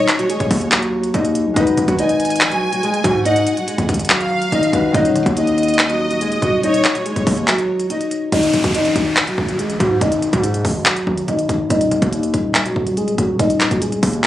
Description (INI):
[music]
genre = hip hop, trap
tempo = 142 BPM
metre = 4/4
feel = half-time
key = unclear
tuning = A4 = 440 Hz
[part]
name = nylon-string guitar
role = melody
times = 0.0-14.3 s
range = Gb3 to Eb5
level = -18 LUFS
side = left 1 dB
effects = low-pass filter, digital delay
[part]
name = rich studio violin section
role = second line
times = 0.0-7.0 s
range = Db5 to Ab5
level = -23 LUFS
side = equal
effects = digital delay
[part]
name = concert harp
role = accompaniment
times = 0.0-8.4 s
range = Eb3 to Cb5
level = -26 LUFS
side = left 2 dB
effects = low-pass filter
[part]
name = distorted 808-style bass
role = bass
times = 0.0-14.3 s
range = Eb1 to Ab2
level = -22 LUFS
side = equal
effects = distortion
[part]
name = trap drum kit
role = drums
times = 0.1-14.3 s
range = handclaps, hi-hat, kick drum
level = -18 LUFS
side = equal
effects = vintage 12-bit sampler grit
[part]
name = downlifter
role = sound effects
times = 8.3-11.7 s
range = none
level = -27 LUFS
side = equal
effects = none
[sound]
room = light reverb, small room ambience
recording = recorded on a phone in the room, club reverb, compression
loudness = -14 LUFS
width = side -13 dB against mid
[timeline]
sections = 0.0-8.3 A section; 8.3-14.3 B section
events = break 7.5-8.3; filter sweep 8.3-14.3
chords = 0.0 Ebm7; 1.6 Abm7; 4.9 Ebm7; 8.3 Ab5; 11.7 Ebm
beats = 0.30 0.72 1.14 | 1.56 1.99 2.41 2.83 | 3.25 3.68 4.10 4.52 | 4.94 5.37 5.79 6.21 | 6.63 7.06 7.48 7.90 | 8.32 8.75 9.17 9.59 | 10.01 10.44 10.86 11.28 | 11.70 12.13 12.55 12.97 | 13.39 13.82 14.24